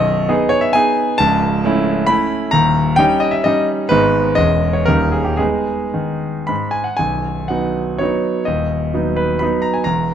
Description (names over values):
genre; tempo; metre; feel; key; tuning
classical, romantic triple-time dance for piano with dotted rhythms; 100-141 BPM; 3/4; rubato; G# minor, B major from 7.0 s; A4 = 439 Hz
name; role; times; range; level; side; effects
clear concert grand piano; solo; 0.0-10.1 s; B0 to B5; -14 LUFS; equal; none
room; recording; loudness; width
light reverb; close, detailed microphones; -14 LUFS; side -9 dB against mid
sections
0.0-7.0 A section; 7.0-10.1 B section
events
none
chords
0.0 G#m/B; 1.2 A/C#; 2.5 D#7; 3.9 G#m; 4.4 C#m/E; 4.9 D#7; 5.4 G#m; 7.0 B; 8.5 B/D#